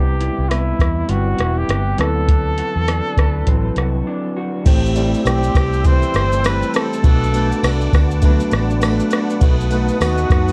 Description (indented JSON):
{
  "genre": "indie pop, bedroom pop",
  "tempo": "101 BPM",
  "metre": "4/4",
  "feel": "swing 60% on 16ths",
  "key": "unclear",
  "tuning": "A4 = 440 Hz",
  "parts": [
    { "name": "breathy trumpet", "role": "melody", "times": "0.0-10.5 s", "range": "E4 to C5", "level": "-26 LUFS", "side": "equal", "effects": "subtle chorus" },
    { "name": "electric guitar through a small old amp", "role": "accompaniment", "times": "0.0-10.5 s", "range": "A2 to B4", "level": "-28 LUFS", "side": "equal", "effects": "subtle chorus, vibrato effect" },
    { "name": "mellow tine electric piano", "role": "accompaniment", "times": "0.0-10.5 s", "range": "F#3 to D5", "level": "-26 LUFS", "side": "equal", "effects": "none" },
    { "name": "vintage muted fingered electric bass", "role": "bass", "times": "0.0-10.5 s", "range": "E1 to F#2", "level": "-22 LUFS", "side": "equal", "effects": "none" },
    { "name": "soft vintage rhythm box", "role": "drums", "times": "0.2-10.5 s", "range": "crash cymbal, hi-hat, kick drum, ride cymbal, rim click, shaker", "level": "-19 LUFS", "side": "equal", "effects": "none" },
    { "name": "warm analog pad", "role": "sustained chords", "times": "4.7-10.5 s", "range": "B4 to E6", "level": "-33 LUFS", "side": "equal", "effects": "chorus" },
    { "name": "tambourine", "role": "percussion", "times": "4.7-10.5 s", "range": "none", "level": "-42 LUFS", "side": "equal", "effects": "none" }
  ],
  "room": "light reverb",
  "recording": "cassette tape",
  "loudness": "-17 LUFS",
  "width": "mono",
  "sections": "0.0-4.7 A section; 4.7-10.5 B section",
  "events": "break 4.1-4.7",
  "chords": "0.0 Cmaj7; 2.0 D13; 4.7 Am7; 7.0 Bm7; 9.4 B7"
}